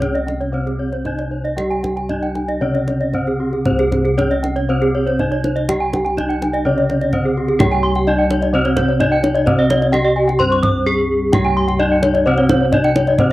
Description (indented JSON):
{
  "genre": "Balinese gamelan",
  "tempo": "115-129 BPM",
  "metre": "4/4",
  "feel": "straight",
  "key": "C pelog",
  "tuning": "A4 = 442 Hz",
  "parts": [
    { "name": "gamelan-type bronze metallophone", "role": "melody", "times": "0.0-13.3 s", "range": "C4 to C5", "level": "-20 LUFS", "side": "equal", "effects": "cassette tape" },
    { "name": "gamelan-type bronze metallophone", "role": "accompaniment", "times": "0.0-13.3 s", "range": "C3 to C4", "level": "-23 LUFS", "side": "equal", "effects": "cassette tape" },
    { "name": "gamelan-type bronze metallophone", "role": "arpeggios", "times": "0.0-13.3 s", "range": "G4-45c to C6", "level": "-21 LUFS", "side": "left 3 dB", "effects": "cassette tape" },
    { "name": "gamelan-type bossed gongs", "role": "bass", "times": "0.0-13.3 s", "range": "C2 to G4-45c", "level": "-23 LUFS", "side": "equal", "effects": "none" },
    { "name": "kendang", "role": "percussion", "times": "0.0-13.3 s", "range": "none", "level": "-22 LUFS", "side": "right 1 dB", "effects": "none" },
    { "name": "gamelan-type bronze metallophone", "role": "arpeggios", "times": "0.1-13.0 s", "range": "Ab4-40c to D6+50c", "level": "-22 LUFS", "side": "right 2 dB", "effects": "cassette tape, tape echo" }
  ],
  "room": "wet booth ambience, RT60 0.2 s",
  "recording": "home recording on cassette",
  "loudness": "-14 LUFS",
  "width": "side -16 dB against mid",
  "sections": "0.0-7.6 A section; 7.6-13.3 B section",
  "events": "break 10.6-11.3",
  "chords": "none"
}